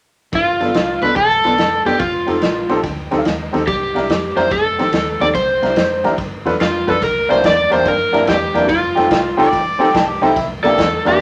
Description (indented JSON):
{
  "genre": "electric blues shuffle",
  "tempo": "144 BPM",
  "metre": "4/4",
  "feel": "swing 67% on 8ths",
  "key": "C mixolydian",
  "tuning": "A4 = 441 Hz",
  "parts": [
    { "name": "electric guitar through a small old amp", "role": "riff", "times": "0.3-11.2 s", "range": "F2 to G4", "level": "-22 LUFS", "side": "equal", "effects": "none" },
    { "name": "vintage muted fingered electric bass", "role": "bass", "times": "0.3-11.2 s", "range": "F1 to G2", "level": "-32 LUFS", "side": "equal", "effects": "none" },
    { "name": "raw garage drum kit", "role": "drums", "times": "0.3-11.1 s", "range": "kick drum, ride cymbal, snare drum", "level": "-24 LUFS", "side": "equal", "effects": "none" },
    { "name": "overdriven slide guitar", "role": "melody", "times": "0.4-11.2 s", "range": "F4 to D5", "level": "-18 LUFS", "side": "equal", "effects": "none" },
    { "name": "clear upright piano", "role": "accompaniment", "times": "0.6-11.1 s", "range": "Bb3 to C6", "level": "-22 LUFS", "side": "equal", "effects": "none" },
    { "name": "warm harmonica", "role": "second line", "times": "9.4-10.5 s", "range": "E4 to D5", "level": "-23 LUFS", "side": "equal", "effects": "overdrive" }
  ],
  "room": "moderate club reverb, RT60 0.5 s",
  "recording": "none",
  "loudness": "-16 LUFS",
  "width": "mono",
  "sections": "0.3-7.0 A section; 7.0-11.2 B section",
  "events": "upright piano fill 2.4-3.7",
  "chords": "0.3 G7; 2.0 F7; 3.7 C7; 4.5 F7; 5.3 C7; 6.2 G7; 7.0 C9; 8.7 F9; 10.4 C9",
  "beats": "| 0.33 0.75 1.17 1.58 | 2.00 2.42 2.84 3.25 | 3.67 4.09 4.51 4.92 | 5.34 5.76 6.18 6.60 | 7.01 7.43 7.85 8.27 | 8.69 9.10 9.52 9.94 | 10.36 10.78 11.19"
}